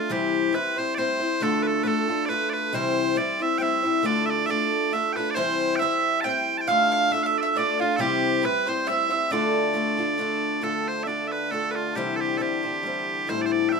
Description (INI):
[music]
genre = celtic folk, Celtic waltz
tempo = 137 BPM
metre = 3/4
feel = swing 54% on 8ths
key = D dorian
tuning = A4 = 441 Hz
[part]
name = loud bright bagpipes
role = melody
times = 0.0-13.8 s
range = F4 to A5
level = -25 LUFS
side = right 4 dB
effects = none
[part]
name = picked old ladder-braced acoustic guitar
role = accompaniment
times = 0.0-13.8 s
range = A2 to C5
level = -26 LUFS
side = left 4 dB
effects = none
[part]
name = mandolin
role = second line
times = 5.4-10.2 s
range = F4 to G5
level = -27 LUFS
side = right 3 dB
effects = none
[part]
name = mellow accordion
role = drone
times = 10.6-13.8 s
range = D3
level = -37 LUFS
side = left 4 dB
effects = none
[sound]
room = moderate small room ambience, RT60 0.5 s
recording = minimal, uncompressed stereo recording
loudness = -22 LUFS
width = side -4 dB against mid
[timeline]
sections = 0.1-10.6 A section; 10.6-13.8 B section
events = none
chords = 0.1 C; 1.4 Dm; 2.7 C; 4.0 Dm; 5.4 C; 6.7 Dm; 8.0 C; 9.3 Dm; 11.9 C; 13.3 Am7